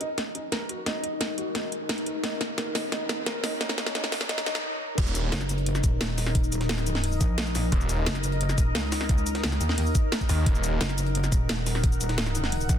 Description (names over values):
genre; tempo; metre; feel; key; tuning
dark technical drum and bass; 175 BPM; 4/4; straight; Eb minor; A4 = 440 Hz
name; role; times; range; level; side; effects
deep dark ambient pad; sustained chords; 0.0-12.8 s; Eb4 to Gb5; -33 LUFS; left 2 dB; chorus, built-in reverb, sidechain pumping
felt-muted upright piano; arpeggios; 0.0-4.6 s; Eb4 to Eb5; -34 LUFS; right 1 dB; sidechain pumping, digital delay
drum and bass drum kit; drums; 0.0-12.8 s; crash cymbal, hi-hat, shaker, snare drum; -30 LUFS; equal; soft clipping on snare
riser and swell; sound effects; 0.8-5.0 s; none; -38 LUFS; equal; none
snarling distorted saw bass; bass; 5.0-5.3, 7.7-8.1, 10.3-10.8 s; Eb1 to Eb2; -26 LUFS; equal; distortion, overdrive, sidechain pumping
electronic kick drum; drums; 5.0-12.8 s; none; -24 LUFS; equal; none
jungle sampler-style drum kit; drums; 5.0-12.8 s; hi-hat, snare drum; -39 LUFS; left 1 dB; none
metallic wobble bass; bass; 5.3-12.8 s; Eb1 to Eb2; -27 LUFS; equal; distortion, chorus
room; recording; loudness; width
light reverb; dense, heavily limited modern master, high-pass filter; -24 LUFS; side -9 dB against mid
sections
0.0-5.0 A section; 5.0-12.8 B section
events
build-up 0.0-5.0; drum fill 0.0-4.6; filter sweep on ambient pad 0.0-5.0; riser 0.8-4.6; swell 4.3-5.0; break 4.6-5.0; drop 5.0-12.8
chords
0.0 Eb5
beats
0.18 0.52 | 0.86 1.21 1.55 1.89 | 2.24 2.58 2.92 3.26 | 3.61 3.95 4.29 4.64 | 4.98 5.32 5.66 6.01 | 6.35 6.69 7.04 7.38 | 7.72 8.06 8.41 8.75 | 9.09 9.44 9.78 10.12 | 10.46 10.81 11.15 11.49 | 11.84 12.18 12.52